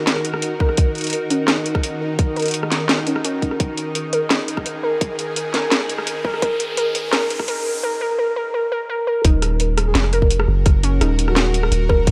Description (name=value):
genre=half-time drum and bass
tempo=170 BPM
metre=4/4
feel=half-time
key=Eb minor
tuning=A4 = 439 Hz
part: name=bowed-like drone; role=sustained chords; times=0.0-12.1 s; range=Eb3 to Bb4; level=-30 LUFS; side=equal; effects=built-in reverb, phaser, sidechain pumping
part: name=pulsing gated texture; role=texture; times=0.0-7.8 s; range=Bb4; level=-34 LUFS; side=equal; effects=none
part: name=drum and bass drum kit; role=drums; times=0.1-12.1 s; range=hi-hat, rim click, snare drum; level=-24 LUFS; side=equal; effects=none
part: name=warbly dusty pluck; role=arpeggios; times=0.6-12.1 s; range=Db4 to Bb4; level=-26 LUFS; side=equal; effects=chorus, cassette tape, tape echo
part: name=electronic kick drum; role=drums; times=0.6-12.1 s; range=none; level=-20 LUFS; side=equal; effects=none
part: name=riser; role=sound effects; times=4.6-7.8 s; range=none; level=-34 LUFS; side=equal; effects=none
part: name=long sustained 808-style bass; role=bass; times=9.2-12.1 s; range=Eb1 to Gb1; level=-20 LUFS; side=equal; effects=none
part: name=breathy flute-like synth lead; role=melody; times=9.9-11.6 s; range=Gb4 to Bb4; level=-30 LUFS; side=equal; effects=chorus, vintage 12-bit sampler grit, tape echo
room=light reverb, digital ambience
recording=dry, gritty hardware recording, high-pass filter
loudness=-20 LUFS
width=mono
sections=0.0-9.2 A section; 9.2-12.1 B section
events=build-up 0.0-9.2; filter sweep on synth pluck 0.0-9.2; riser 4.6-7.8; drop 9.2-12.1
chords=0.0 Ebm